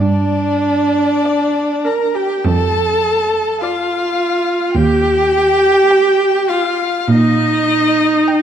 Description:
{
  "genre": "classical, slow romantic movement for string quartet",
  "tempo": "51 BPM",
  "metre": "4/4",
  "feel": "rubato",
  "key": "G minor",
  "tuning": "A4 = 440 Hz",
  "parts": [
    { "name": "rich violin", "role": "melody", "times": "0.0-8.4 s", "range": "D5 to Bb5", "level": "-20 LUFS", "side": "left 9 dB", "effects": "none" },
    { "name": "clear viola", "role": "accompaniment", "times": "0.0-8.4 s", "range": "D4 to Bb4", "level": "-14 LUFS", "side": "right 2 dB", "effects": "none" },
    { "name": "clear cello", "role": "bass", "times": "0.0-8.0 s", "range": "Eb2 to Bb2", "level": "-17 LUFS", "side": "right 2 dB", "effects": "none" },
    { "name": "clear violin", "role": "second line", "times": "1.3-8.4 s", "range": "D5 to G5", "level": "-28 LUFS", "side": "left 2 dB", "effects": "none" }
  ],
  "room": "moderate concert hall reverb, RT60 2.1 s",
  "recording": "dark, warm production",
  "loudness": "-12 LUFS",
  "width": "side -9 dB against mid",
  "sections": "0.0-8.4 A section",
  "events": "none",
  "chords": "0.0 G5; 2.4 Dm/F; 4.8 Eb"
}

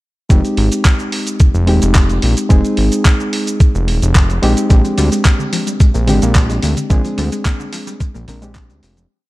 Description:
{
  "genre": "nu-disco, nu disco",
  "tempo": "109 BPM",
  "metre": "4/4",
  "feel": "straight",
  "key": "F dorian",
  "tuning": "A4 = 438 Hz",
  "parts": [
    { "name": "reed electric piano", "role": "accompaniment", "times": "0.3-9.1 s", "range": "Ab3 to Bb4", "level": "-18 LUFS", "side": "equal", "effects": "sidechain pumping, dub echo" },
    { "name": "fat analog bass", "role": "bass", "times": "0.3-9.1 s", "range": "Eb1 to D2", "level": "-15 LUFS", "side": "equal", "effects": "tube saturation" },
    { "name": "dusty soul sampler-style drum kit", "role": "drums", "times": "0.3-9.1 s", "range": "cabasa, handclaps, hi-hat", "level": "-22 LUFS", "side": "right 1 dB", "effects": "none" },
    { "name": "electronic kick drum", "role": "drums", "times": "0.3-8.7 s", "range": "none", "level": "-10 LUFS", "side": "equal", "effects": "none" },
    { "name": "wide unison pluck", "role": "arpeggios", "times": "4.7-9.0 s", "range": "D3 to C4", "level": "-25 LUFS", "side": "left 2 dB", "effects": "sidechain pumping, ping-pong delay" },
    { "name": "maracas", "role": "percussion", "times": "4.7-9.1 s", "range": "none", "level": "-31 LUFS", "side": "left 4 dB", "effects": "none" }
  ],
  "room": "digital ambience",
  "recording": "dark, warm production",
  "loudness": "-11 LUFS",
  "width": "side -18 dB against mid",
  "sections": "0.3-9.1 drop",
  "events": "drop 0.3-9.1; fade-out 6.2-9.1",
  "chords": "0.3 Fm7; 4.7 Bb13"
}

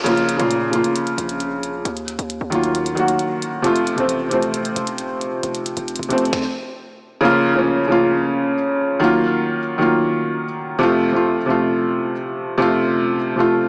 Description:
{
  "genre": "hip hop, trap",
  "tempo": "134 BPM",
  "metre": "4/4",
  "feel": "half-time",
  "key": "unclear",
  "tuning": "A4 = 440 Hz",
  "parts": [
    { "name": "felt-muted upright piano", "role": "accompaniment", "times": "0.0-13.7 s", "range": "C3 to Gb4", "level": "-20 LUFS", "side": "equal", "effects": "none" },
    { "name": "distorted 808-style bass", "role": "bass", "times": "0.1-6.3 s", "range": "F1 to Bb2", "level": "-32 LUFS", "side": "equal", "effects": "distortion" },
    { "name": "minimal click drum kit", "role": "drums", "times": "0.1-6.4 s", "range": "hi-hat, kick drum, snare drum", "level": "-30 LUFS", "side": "equal", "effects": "none" }
  ],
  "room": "moderate lush hall reverb, RT60 2.0 s",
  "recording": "dreamy mix soaked in reverb, small speaker sound",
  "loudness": "-19 LUFS",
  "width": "mono",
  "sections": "0.1-7.2 A section; 7.2-13.7 B section",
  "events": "stop 6.3-7.2",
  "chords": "0.1 Bbm; 1.9 Ebmadd9; 3.6 F; 7.2 Bbm; 9.0 Ebmadd9; 10.8 F"
}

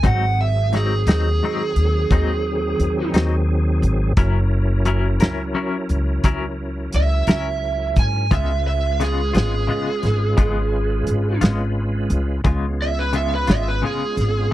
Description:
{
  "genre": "slow blues",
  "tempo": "58 BPM (dotted quarters)",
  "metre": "12/8",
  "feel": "straight",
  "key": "Db mixolydian",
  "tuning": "A4 = 440 Hz",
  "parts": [
    { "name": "lead guitar through a small cranked amp", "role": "melody", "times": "0.0-14.5 s", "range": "Ab4 to Ab5", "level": "-23 LUFS", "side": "right 4 dB", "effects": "overdrive" },
    { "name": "semi-hollow electric guitar", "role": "accompaniment", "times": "0.0-14.5 s", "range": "Ab2 to Bb4", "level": "-25 LUFS", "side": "left 5 dB", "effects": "tremolo" },
    { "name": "bright tonewheel organ", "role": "sustained chords", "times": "0.0-14.5 s", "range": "Eb3 to Cb5", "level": "-27 LUFS", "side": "equal", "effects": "slow rotary speaker, overdrive, chorus vibrato" },
    { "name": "upright bass", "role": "bass", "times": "0.0-14.5 s", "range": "Gb1 to Ab2", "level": "-20 LUFS", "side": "equal", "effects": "none" },
    { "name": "warm soul drum kit", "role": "drums", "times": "0.0-14.3 s", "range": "hi-hat, kick drum, snare drum", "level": "-18 LUFS", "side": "equal", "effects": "none" }
  ],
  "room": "little or no reverb",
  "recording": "dry, close 1970s-style studio recording",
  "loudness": "-17 LUFS",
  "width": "side -14 dB against mid",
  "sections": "0.0-14.5 A section",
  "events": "none",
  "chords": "0.0 Ab7; 4.2 Gb7; 8.3 Db7"
}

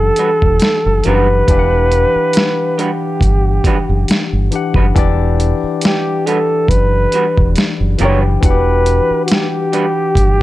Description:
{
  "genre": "R&B, neo-soul",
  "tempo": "69 BPM",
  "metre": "4/4",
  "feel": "swing 54% on 16ths",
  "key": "E minor",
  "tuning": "A4 = 440 Hz",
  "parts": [
    { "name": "breathy flugelhorn", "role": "melody", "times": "0.0-10.4 s", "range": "F#4 to C#5", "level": "-16 LUFS", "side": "right 1 dB", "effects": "none" },
    { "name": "barky tine electric piano", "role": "accompaniment", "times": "0.0-10.4 s", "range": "E3 to G5", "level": "-19 LUFS", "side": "left 6 dB", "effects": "overdrive" },
    { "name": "deep dub fingered electric bass", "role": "bass", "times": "0.0-10.4 s", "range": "E1 to G1", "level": "-15 LUFS", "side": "equal", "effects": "none" },
    { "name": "electric guitar through a small old amp", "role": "second line", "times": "0.2-9.8 s", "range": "G3 to B4", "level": "-20 LUFS", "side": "right 4 dB", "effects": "none" },
    { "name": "dusty soul sampler-style drum kit", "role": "drums", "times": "0.2-10.4 s", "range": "hi-hat, kick drum, snare drum", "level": "-15 LUFS", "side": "equal", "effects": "overdrive" }
  ],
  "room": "light reverb",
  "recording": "dark, warm production",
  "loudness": "-11 LUFS",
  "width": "side -16 dB against mid",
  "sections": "0.0-10.4 A section",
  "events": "none",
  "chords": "0.0 Em9"
}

